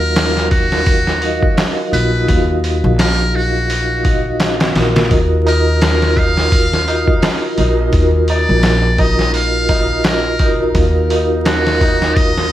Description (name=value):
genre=trip hop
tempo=85 BPM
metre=4/4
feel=swing 57% on 16ths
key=Eb minor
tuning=A4 = 443 Hz
part: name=trumpet with metal mute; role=melody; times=0.0-12.5 s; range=Gb4 to F5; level=-20 LUFS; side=equal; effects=tape echo
part: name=vibraphone with medium hard mallets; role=accompaniment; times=0.0-12.5 s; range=Gb3 to F5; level=-18 LUFS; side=equal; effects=tremolo, vintage 12-bit sampler grit, tape echo
part: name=upright bass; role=bass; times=0.0-12.5 s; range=Bb1 to Eb2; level=-17 LUFS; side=equal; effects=none
part: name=trip hop sampler-style drum kit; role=drums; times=0.2-12.5 s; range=hi-hat, kick drum, snare drum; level=-16 LUFS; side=equal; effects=none
part: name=tabla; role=percussion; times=5.1-12.3 s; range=none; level=-27 LUFS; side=right 2 dB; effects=none
part: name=backwards swelling texture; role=texture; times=6.6-12.5 s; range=Eb4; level=-29 LUFS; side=right 1 dB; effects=none
room=small room ambience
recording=vinyl crackle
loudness=-12 LUFS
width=side -13 dB against mid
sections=0.0-12.5 A section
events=none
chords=0.0 Ebmadd9